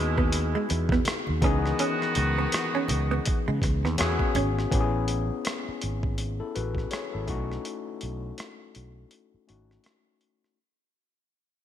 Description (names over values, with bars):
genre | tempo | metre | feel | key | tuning
R&B, neo-soul | 82 BPM | 4/4 | swing 59% on 16ths | unclear | A4 = 441 Hz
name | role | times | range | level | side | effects
overdriven tine electric piano | accompaniment | 0.0-10.6 s | E3 to C#5 | -31 LUFS | left 7 dB | none
clear horn section | stabs | 0.0-4.3 s | B2 to F#4 | -32 LUFS | right 3 dB | none
fretless electric bass | bass | 0.0-9.8 s | G#1 to C#3 | -28 LUFS | right 1 dB | none
hollow-body jazz guitar | second line | 0.2-4.5 s | G#3 to C#4 | -32 LUFS | right 5 dB | lush chorus
boom bap sampler-style drum kit | drums | 0.2-10.5 s | hi-hat, kick drum, rim click | -29 LUFS | right 1 dB | gated reverb
congas | percussion | 0.3-4.5 s | none | -38 LUFS | right 4 dB | none
room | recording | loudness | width
light reverb, digital ambience | bright 1980s-style digital production | -24 LUFS | side -10 dB against mid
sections
0.0-4.7 A section; 4.7-10.6 B section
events
fade-out 4.7-10.6; break 7.6-10.6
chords
0.0 Emaj9; 1.4 C#m9; 4.0 E69; 4.7 Amaj9; 7.3 B9